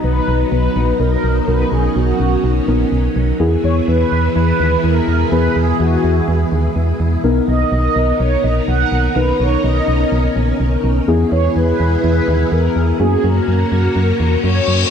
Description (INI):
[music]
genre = pop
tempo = 125 BPM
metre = 4/4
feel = straight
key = B major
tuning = A4 = 440 Hz
[part]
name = mellow synth brass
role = melody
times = 0.0-14.9 s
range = F#4 to F#5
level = -20 LUFS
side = right 1 dB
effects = chorus, tremolo
[part]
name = muted felt-like synth keys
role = accompaniment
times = 0.0-14.9 s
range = A#3 to A#5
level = -21 LUFS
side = left 3 dB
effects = chorus
[part]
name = string machine, full ensemble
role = sustained chords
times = 0.0-14.9 s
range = E3 to A#4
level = -20 LUFS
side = equal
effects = ensemble chorus
[part]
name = solid FM bass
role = bass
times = 0.0-14.8 s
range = A#1 to F#2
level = -16 LUFS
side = equal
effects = none
[part]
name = reverse cymbal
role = sound effects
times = 14.2-14.9 s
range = none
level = -20 LUFS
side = left 6 dB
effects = none
[sound]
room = moderate plate reverb, RT60 3.4 s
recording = dark, warm production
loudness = -13 LUFS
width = side -7 dB against mid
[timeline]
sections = 0.0-14.9 A section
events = reverse cymbal 14.2-14.9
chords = 0.0 Bmaj7; 3.4 E; 7.2 Bmaj7; 11.1 E; 13.0 F#